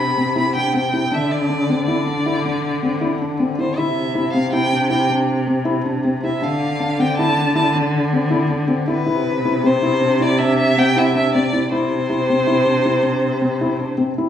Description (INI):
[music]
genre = contemporary instrumental, contemporary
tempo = 159 BPM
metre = 7/4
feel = straight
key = C major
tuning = A4 = 440 Hz
[part]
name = rich violin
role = melody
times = 0.0-13.9 s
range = B4 to B5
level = -20 LUFS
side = equal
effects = none
[part]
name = felt-muted upright piano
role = arpeggios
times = 0.0-14.3 s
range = C4 to E4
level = -20 LUFS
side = left 2 dB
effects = none
[part]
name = rich cello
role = bass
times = 0.0-14.3 s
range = C3 to D3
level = -21 LUFS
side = equal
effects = none
[sound]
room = wet recital hall reverb, RT60 1.5 s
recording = heard from further back in the room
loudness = -16 LUFS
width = side -9 dB against mid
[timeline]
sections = 0.0-14.3 A section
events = none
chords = 0.0 Cmaj7; 1.1 Cadd9/D; 3.8 C; 6.4 Dm7; 9.1 C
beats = 0.36 0.74 | 1.12 1.50 1.88 2.26 2.64 3.02 3.39 | 3.77 4.15 4.53 4.91 5.29 5.67 6.04 | 6.42 6.80 7.18 7.56 7.94 8.31 8.69 | 9.07 9.45 9.83 10.20 10.58 10.96 11.34 | 11.72 12.09 12.47 12.85 13.23 13.61 13.98